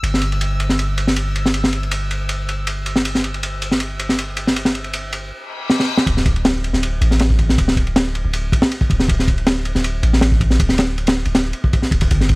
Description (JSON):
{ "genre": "drum and bass, jungle", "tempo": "159 BPM", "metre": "4/4", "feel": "straight", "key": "unclear", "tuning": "A4 = 441 Hz", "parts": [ { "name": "long sustained 808-style bass", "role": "bass", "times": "0.0-12.4 s", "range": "D1 to A1", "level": "-20 LUFS", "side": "equal", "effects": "tube saturation" }, { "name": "crunchy breakbeat drum kit", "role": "drums", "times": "0.0-12.4 s", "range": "kick drum, ride cymbal, snare drum", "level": "-17 LUFS", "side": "equal", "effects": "none" }, { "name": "drifting glass-harmonics texture", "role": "texture", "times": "0.0-5.3 s", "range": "E6", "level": "-32 LUFS", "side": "equal", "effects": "chorus, built-in reverb" }, { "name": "reverse cymbal and sub drop", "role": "sound effects", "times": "5.5-7.6 s", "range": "none", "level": "-26 LUFS", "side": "left 2 dB", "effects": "none" } ], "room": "little or no reverb", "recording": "vinyl crackle", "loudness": "-15 LUFS", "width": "side -25 dB against mid", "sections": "0.0-6.1 A section; 6.1-12.4 B section", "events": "reverse cymbal 5.5-6.1; drum fill 5.7-6.1; drop 6.1-12.4; impact 6.1-7.6", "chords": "0.0 Em/G; 6.1 D5" }